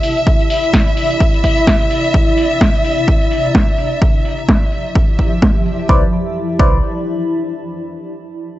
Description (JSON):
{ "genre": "piano house", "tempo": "128 BPM", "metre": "4/4", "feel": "swing 58% on 16ths", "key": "C major", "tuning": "A4 = 440 Hz", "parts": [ { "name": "rich studio violin section", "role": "sustained chords", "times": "0.0-5.9 s", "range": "E5", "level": "-19 LUFS", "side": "left 1 dB", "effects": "sidechain pumping" }, { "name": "house drum kit", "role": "drums", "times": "0.0-5.9 s", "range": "cabasa, hi-hat, snare drum", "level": "-17 LUFS", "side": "equal", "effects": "low-pass filter on hats, studio reverb, low-pass filter on perc, low-pass filter on snare" }, { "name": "granular cloud pad", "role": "texture", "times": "0.0-7.7 s", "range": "C3 to B5", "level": "-20 LUFS", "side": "equal", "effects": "built-in reverb, sidechain pumping" }, { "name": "electronic kick drum", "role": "drums", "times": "0.3-6.7 s", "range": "none", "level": "-14 LUFS", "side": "equal", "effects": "studio reverb" }, { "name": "barking FM electric piano", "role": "riff", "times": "5.9-6.8 s", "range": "E4 to D5", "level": "-19 LUFS", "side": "equal", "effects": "phaser, sidechain pumping, analog delay" }, { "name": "solid FM bass", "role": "bass", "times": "5.9-6.8 s", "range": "C2", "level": "-18 LUFS", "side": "equal", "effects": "sidechain pumping" } ], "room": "studio ambience", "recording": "nothing above 7.9 kHz", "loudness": "-12 LUFS", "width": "side -15 dB against mid", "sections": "0.0-5.9 A section; 5.9-7.8 B section", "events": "filter sweep on drum 0.0-5.9", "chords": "0.0 Cmaj9", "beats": "| 0.27 0.74 1.20 1.67 | 2.14 2.61 3.08 3.55 | 4.02 4.49 4.95 5.42 | 5.89 6.36 6.83 7.30" }